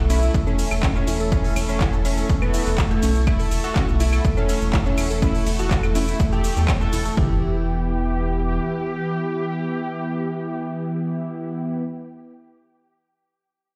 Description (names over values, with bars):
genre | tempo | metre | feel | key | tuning
melodic techno | 123 BPM | 4/4 | straight | E dorian | A4 = 440 Hz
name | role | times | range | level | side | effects
dark analog pad | sustained chords | 0.0-11.8 s | E4 to C#6 | -38 LUFS | equal | chorus, sidechain pumping
unison pluck | arpeggios | 0.0-7.4 s | C#4 to A4 | -34 LUFS | equal | cassette tape, sidechain pumping, digital delay
brassy analog pad | stabs | 0.0-11.8 s | E3 to A4 | -30 LUFS | equal | chorus, cassette tape, sidechain pumping, digital delay
round analog bass | bass | 0.0-8.6 s | E1 to E2 | -26 LUFS | equal | sidechain pumping
unison lead | melody | 0.1-11.8 s | A3 to A4 | -32 LUFS | equal | lush chorus, sidechain pumping, delay
dark detuned synth bell | second line | 0.1-12.1 s | A4 to A5 | -37 LUFS | equal | chorus, vintage 12-bit sampler grit, sidechain pumping, digital delay
techno drum kit | drums | 0.1-7.2 s | claves, handclaps, hi-hat, ride cymbal, shaker | -32 LUFS | equal | none
techno drum kit | drums | 0.3-7.3 s | kick drum, toms | -24 LUFS | equal | none
room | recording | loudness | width
light reverb, digital ambience | played on a big sound system in a bare room, stone room reverb | -22 LUFS | mono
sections
0.0-7.2 A section; 7.2-11.1 B section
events
drop 0.0-7.2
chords
0.0 A/E; 7.2 Em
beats
0.34 0.83 | 1.32 1.81 2.30 2.78 | 3.27 3.76 4.25 4.74 | 5.22 5.71 6.20 6.69 | 7.17 7.66 8.15 8.64 | 9.12 9.61 10.10 10.59